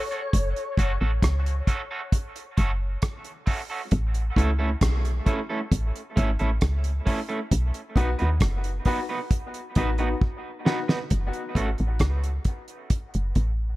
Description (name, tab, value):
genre	dub reggae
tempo	67 BPM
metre	4/4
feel	straight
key	F# dorian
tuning	A4 = 439 Hz
part	clear grand piano	stabs	0.0-0.9, 8.0-10.8 s	A3 to F#4	-34 LUFS	left 4 dB	high-pass filter, dub echo
part	electric guitar at the edge of break-up	accompaniment	0.1-11.7 s	A3 to B4	-32 LUFS	right 3 dB	high-pass filter, dub echo
part	damped 70s drum kit	drums	0.1-13.6 s	hi-hat, kick drum, rim click, snare drum	-24 LUFS	equal	none
part	woody FM bass	bass	0.3-13.7 s	F#1 to D#2	-24 LUFS	equal	none
room	small room ambience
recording	echo-heavy mix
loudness	-23 LUFS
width	side -18 dB against mid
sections	0.0-11.1 A section; 11.1-13.8 B section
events	drum fill 10.2-11.1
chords	0.0 F#m; 3.9 A; 7.5 B; 11.1 F#m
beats	| 0.34 1.24 2.13 3.03 | 3.93 4.82 5.72 6.62 | 7.51 8.41 9.31 10.21 | 11.11 12.01 12.90